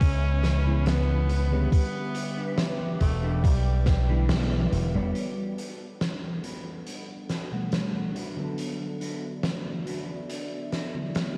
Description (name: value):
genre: vaporwave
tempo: 70 BPM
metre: 4/4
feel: straight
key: G lydian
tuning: A4 = 440 Hz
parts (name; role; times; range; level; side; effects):
- bright tenor saxophone; melody; 0.0-4.3 s; G3 to C#4; -38 LUFS; equal; tape echo
- mellow FM electric piano; accompaniment; 0.0-11.4 s; B2 to F#5; -36 LUFS; equal; phaser, analog chorus, analog delay
- warbly tape-like pad; sustained chords; 0.0-11.4 s; B3 to D6; -42 LUFS; equal; chorus, built-in reverb
- slap bass with an envelope filter; bass; 0.0-5.1 s; E1 to C#2; -26 LUFS; equal; none
- electronic kick drum; drums; 0.0-4.0 s; none; -24 LUFS; equal; none
- oversized low-tuned drum kit; drums; 0.0-11.3 s; hi-hat, snare drum; -34 LUFS; equal; none
- electric guitar through a small old amp; riff; 0.4-11.4 s; G2 to C#5; -42 LUFS; equal; subtle chorus, low-pass filter, analog delay
room: moderate lush hall reverb, RT60 3.0 s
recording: dreamy mix soaked in reverb, cassette tape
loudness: -27 LUFS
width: mono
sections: 0.0-5.2 A section; 5.2-11.4 B section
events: band accent 4.3-4.7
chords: 0.0 C#m7; 1.7 Em7; 5.2 Gmaj9; 8.2 D69